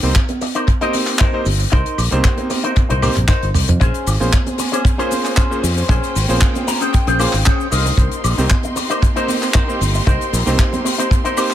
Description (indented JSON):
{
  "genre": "nu-disco, nu disco",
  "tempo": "115 BPM",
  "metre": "4/4",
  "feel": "straight",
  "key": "unclear",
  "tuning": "A4 = 439 Hz",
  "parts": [
    { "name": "clear electric grand piano", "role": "accompaniment", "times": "0.0-11.5 s", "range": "Bb3 to C5", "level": "-23 LUFS", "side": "right 2 dB", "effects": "sidechain pumping, analog delay" },
    { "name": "fingered electric bass", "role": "bass", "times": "0.0-10.6 s", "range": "G1 to F2", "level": "-18 LUFS", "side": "equal", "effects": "none" },
    { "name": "maracas and congas", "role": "percussion", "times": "0.0-11.5 s", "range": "none", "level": "-27 LUFS", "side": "right 3 dB", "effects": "analog delay" },
    { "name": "electric guitar with an envelope filter", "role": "riff", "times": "0.1-11.5 s", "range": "Db4 to Bb5", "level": "-23 LUFS", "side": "left 2 dB", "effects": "lush chorus, analog delay" },
    { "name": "damped 70s drum kit", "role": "drums", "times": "0.2-11.5 s", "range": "cabasa, handclaps, hi-hat, toms, woodblock", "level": "-22 LUFS", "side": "left 2 dB", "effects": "analog delay" },
    { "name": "kick drum", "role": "drums", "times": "0.2-11.2 s", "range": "none", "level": "-15 LUFS", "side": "equal", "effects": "none" },
    { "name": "rich studio string section", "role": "sustained chords", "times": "3.8-11.5 s", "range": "Bb3 to C6", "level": "-26 LUFS", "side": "equal", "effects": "vintage 12-bit sampler grit, sidechain pumping" }
  ],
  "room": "studio reverb",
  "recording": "echo-heavy mix",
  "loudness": "-14 LUFS",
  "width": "side -11 dB against mid",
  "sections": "0.0-11.5 A section",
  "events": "drum fill 2.8-3.8; clean electric guitar fill 6.4-8.0",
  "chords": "0.0 Cm7; 3.8 Bbm9; 7.7 Cm7",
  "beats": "0.16 0.68 1.20 | 1.72 2.24 2.77 3.29 | 3.81 4.33 4.85 5.37 | 5.90 6.42 6.94 7.46 | 7.98 8.51 9.03 9.55 | 10.07 10.59 11.11"
}